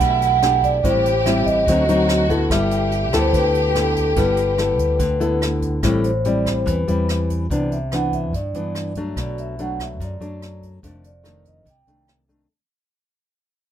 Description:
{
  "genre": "bossa nova",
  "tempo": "144 BPM",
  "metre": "4/4",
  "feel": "straight",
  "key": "unclear",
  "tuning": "A4 = 442 Hz",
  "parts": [
    { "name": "vibraphone with soft mallets", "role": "melody", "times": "0.0-12.1 s", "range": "A4 to G5", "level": "-21 LUFS", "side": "right 1 dB", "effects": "none" },
    { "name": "warm symphonic violin section", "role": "second line", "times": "0.0-5.6 s", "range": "E4 to G4", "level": "-26 LUFS", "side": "right 1 dB", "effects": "none" },
    { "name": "nylon-string guitar", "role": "accompaniment", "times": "0.0-12.5 s", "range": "F2 to A4", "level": "-22 LUFS", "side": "left 2 dB", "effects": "none" },
    { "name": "fingered electric bass", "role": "bass", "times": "0.0-12.5 s", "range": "F1 to G2", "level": "-24 LUFS", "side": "equal", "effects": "none" },
    { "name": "jazz brush drum kit", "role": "drums", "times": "0.0-12.4 s", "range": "hi-hat, kick drum, rim click", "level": "-27 LUFS", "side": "equal", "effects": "none" }
  ],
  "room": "light reverb",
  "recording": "minimal, uncompressed stereo recording",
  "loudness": "-17 LUFS",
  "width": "side -10 dB against mid",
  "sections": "0.0-5.8 A section; 5.8-12.5 B section",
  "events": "fade-out 5.8-12.5; vibraphone solo 5.8-12.5",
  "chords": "0.0 Em11; 0.8 Am7; 1.7 D7b9; 2.5 G69; 5.8 Am7; 7.5 Cmaj9; 9.2 Bm7; 10.8 F13"
}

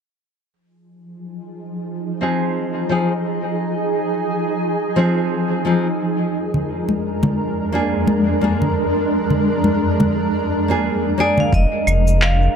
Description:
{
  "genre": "sunset chillout",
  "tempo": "87 BPM",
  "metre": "4/4",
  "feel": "swing 57% on 16ths",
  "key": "F dorian",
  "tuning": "A4 = 440 Hz",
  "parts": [
    { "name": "shimmering ambient pad", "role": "sustained chords", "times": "1.1-12.6 s", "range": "F2 to Bb4", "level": "-20 LUFS", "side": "right 1 dB", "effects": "chorus, built-in reverb, vintage 12-bit sampler grit" },
    { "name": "nylon-string guitar", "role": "accompaniment", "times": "2.2-11.5 s", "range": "F3 to Ab4", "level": "-21 LUFS", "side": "equal", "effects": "auto-pan, low-pass filter, analog delay" },
    { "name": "congas", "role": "percussion", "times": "6.5-11.5 s", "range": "none", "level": "-20 LUFS", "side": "left 1 dB", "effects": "none" },
    { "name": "vibraphone with hard mallets", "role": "melody", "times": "11.2-12.6 s", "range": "D5 to F5", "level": "-20 LUFS", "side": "right 1 dB", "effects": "analog delay" },
    { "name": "round analog bass", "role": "bass", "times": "11.5-12.5 s", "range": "F1", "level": "-15 LUFS", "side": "equal", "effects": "none" },
    { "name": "electronic kick drum", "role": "drums", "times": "11.5-11.7 s", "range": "none", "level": "-18 LUFS", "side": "equal", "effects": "small room ambience" },
    { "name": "electronic shaker, claves and handclaps", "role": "drums", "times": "11.5-12.4 s", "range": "none", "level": "-22 LUFS", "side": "right 1 dB", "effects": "small room ambience" }
  ],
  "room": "moderate spring reverb, RT60 2.5 s",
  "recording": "echo-heavy mix",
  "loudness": "-16 LUFS",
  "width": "side -7 dB against mid",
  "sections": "0.5-11.5 A section; 11.5-12.6 B section",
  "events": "filter sweep on nylon-string guitar 0.5-11.5",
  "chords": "0.5 Fm7; 6.0 Bb7/F; 11.5 Fm7"
}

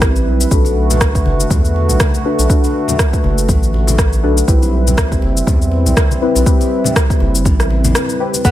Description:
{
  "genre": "afro house",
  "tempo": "121 BPM",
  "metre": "4/4",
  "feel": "swing 57% on 16ths",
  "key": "unclear",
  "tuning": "A4 = 439 Hz",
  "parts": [
    { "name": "warm analog pad", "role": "sustained chords", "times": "0.0-8.5 s", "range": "D3 to B4", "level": "-20 LUFS", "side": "right 1 dB", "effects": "chorus, sidechain pumping" },
    { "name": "deep mellow chord stab", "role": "stabs", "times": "0.0-8.5 s", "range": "C4 to B4", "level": "-20 LUFS", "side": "left 3 dB", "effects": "chorus, vintage 12-bit sampler grit, sidechain pumping, dub echo" },
    { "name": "round analog bass", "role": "bass", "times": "0.0-8.5 s", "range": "F#1 to E2", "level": "-15 LUFS", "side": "equal", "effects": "sidechain pumping" },
    { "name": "electronic kick drum", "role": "drums", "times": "0.0-8.5 s", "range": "none", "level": "-14 LUFS", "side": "equal", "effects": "overdrive" },
    { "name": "electronic rim click and cabasa", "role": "drums", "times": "0.0-8.5 s", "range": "none", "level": "-20 LUFS", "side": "left 1 dB", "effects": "overdrive" },
    { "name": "congas", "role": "percussion", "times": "0.2-8.4 s", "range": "none", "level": "-24 LUFS", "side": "left 3 dB", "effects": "none" },
    { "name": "nylon-string guitar", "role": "arpeggios", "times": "8.4-8.5 s", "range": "B3", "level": "-14 LUFS", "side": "right 1 dB", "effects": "sidechain pumping" }
  ],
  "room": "light reverb, digital ambience",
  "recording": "none",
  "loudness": "-11 LUFS",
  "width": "side -13 dB against mid",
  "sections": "0.0-8.5 A section",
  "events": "break 8.0-8.4",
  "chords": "0.0 Cmaj7; 0.5 Bm7; 4.5 Cmaj7"
}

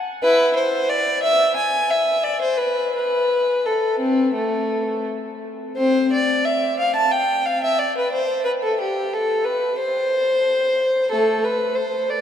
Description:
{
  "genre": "classical, baroque-style suite movement for unaccompanied violin",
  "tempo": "84-91 BPM",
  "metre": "4/4",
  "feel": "rubato",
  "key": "A minor, C major from 5.8 s",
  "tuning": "A4 = 440 Hz",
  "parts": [
    { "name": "rich violin", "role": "solo", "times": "0.2-12.2 s", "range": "A3 to A5", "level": "-18 LUFS", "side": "left 1 dB", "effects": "none" }
  ],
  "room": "wet cathedral reverb, RT60 6.3 s",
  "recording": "in a vast, echoing space",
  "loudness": "-18 LUFS",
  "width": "side -9 dB against mid",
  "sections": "0.0-5.8 A section; 5.8-12.2 A section",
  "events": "none",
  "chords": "none"
}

